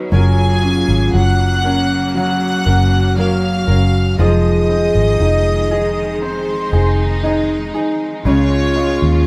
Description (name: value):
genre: pop ballad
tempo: 59 BPM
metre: 4/4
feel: straight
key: unclear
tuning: A4 = 441 Hz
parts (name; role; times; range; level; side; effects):
- dark French horn section; second line; 0.0-9.3 s; Eb4 to Ab4; -24 LUFS; equal; none
- clear concert grand piano; accompaniment; 0.0-9.3 s; Db3 to Ab4; -22 LUFS; equal; none
- clear studio string section; sustained chords; 0.0-9.3 s; Db3 to F4; -30 LUFS; equal; none
- flamenco guitar; arpeggios; 0.0-9.3 s; Db3 to Cb5; -27 LUFS; equal; none
- warm studio violin section; melody; 0.1-9.2 s; Ab4 to Gb6; -23 LUFS; equal; none
- vintage muted fingered electric bass; bass; 0.1-9.3 s; F1 to Eb2; -18 LUFS; equal; none
room: moderate studio reverb, RT60 0.8 s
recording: band playing live in one room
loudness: -15 LUFS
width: mono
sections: 0.0-9.3 A section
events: none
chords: 0.1 Gbmaj7; 4.2 Fm7; 8.3 Db